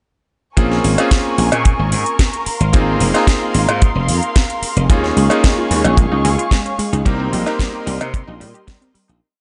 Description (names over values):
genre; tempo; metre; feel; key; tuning
nu-disco, nu disco; 111 BPM; 4/4; straight; Bb dorian; A4 = 439 Hz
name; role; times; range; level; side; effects
bright electric grand piano; accompaniment; 0.6-9.2 s; Bb3 to Bb4; -23 LUFS; equal; delay
muted studio string section; sustained chords; 0.6-9.2 s; Ab4 to Db6; -25 LUFS; equal; sidechain pumping
slap bass; bass; 0.6-9.2 s; F1 to C3; -20 LUFS; equal; sidechain pumping
house drum kit; drums; 0.6-9.2 s; hi-hat, snare drum; -26 LUFS; equal; none
kick drum; drums; 0.6-8.8 s; none; -16 LUFS; equal; none
cowbell; percussion; 1.0-8.1 s; none; -22 LUFS; equal; none
unison pluck; arpeggios; 4.9-9.2 s; G3 to G4; -26 LUFS; equal; sidechain pumping, dub echo
room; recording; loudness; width
little or no reverb; nothing above 10.6 kHz; -16 LUFS; mono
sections
0.6-9.2 drop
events
drop 0.6-9.2; fade-out 6.3-9.2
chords
0.6 Bbm7; 2.5 Ab69; 4.9 Eb9sus4; 7.1 Cm7